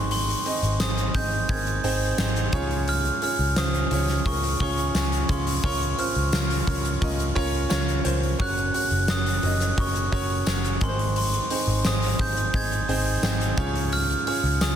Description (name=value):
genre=piano-driven pop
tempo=87 BPM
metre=4/4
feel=straight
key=Ab major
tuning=A4 = 439 Hz
part: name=glockenspiel with rubber mallets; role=melody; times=0.0-14.8 s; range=C6 to Ab6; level=-29 LUFS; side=right 2 dB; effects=none
part: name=warm concert grand piano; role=accompaniment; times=0.0-14.8 s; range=Ab2 to F5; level=-28 LUFS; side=right 3 dB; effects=none
part: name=vintage muted picked electric bass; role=bass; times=0.0-14.8 s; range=Gb1 to Db2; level=-26 LUFS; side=left 1 dB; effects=none
part: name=huge arena drum kit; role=drums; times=0.1-14.8 s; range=hi-hat, kick drum, snare drum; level=-27 LUFS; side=equal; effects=none
part: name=tambourine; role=percussion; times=0.8-14.8 s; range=none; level=-38 LUFS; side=left 9 dB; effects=none
room=light reverb, small room ambience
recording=dense, heavily limited modern master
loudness=-22 LUFS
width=side -9 dB against mid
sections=0.0-14.8 A section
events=grand piano fill 7.4-8.4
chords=0.0 Ab; 2.5 Db; 5.6 Bbm/Db; 8.4 Gb; 10.8 Ab; 13.6 Db